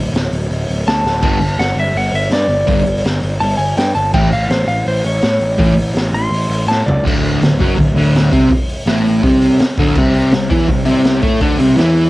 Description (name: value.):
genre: garage rock duo or trio.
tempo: 165 BPM.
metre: 4/4.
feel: straight.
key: D mixolydian from 7.0 s.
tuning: A4 = 440 Hz.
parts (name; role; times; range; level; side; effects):
fuzz picked electric bass; bass; 0.0-12.1 s; D1 to A2; -18 LUFS; equal; overdrive.
raw garage drum kit; drums; 0.1-12.1 s; crash cymbal, hi-hat, kick drum, snare drum, toms; -18 LUFS; equal; cassette tape.
clean lap steel guitar; melody; 0.9-7.0 s; C5 to C6; -18 LUFS; equal; cassette tape.
fuzz guitar; riff; 1.2-12.1 s; D2 to A4; -13 LUFS; equal; distortion, cassette tape.
room: small room ambience.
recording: home recording on cassette.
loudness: -12 LUFS.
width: side -18 dB against mid.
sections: 0.0-7.0 A section; 7.0-12.1 B section.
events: electric slide guitar solo 0.0-7.0; drum fill 1.0, 6.7-7.0.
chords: 0.0 D5; 1.2 G5; 4.1 A; 7.0 D; 10.0 C69.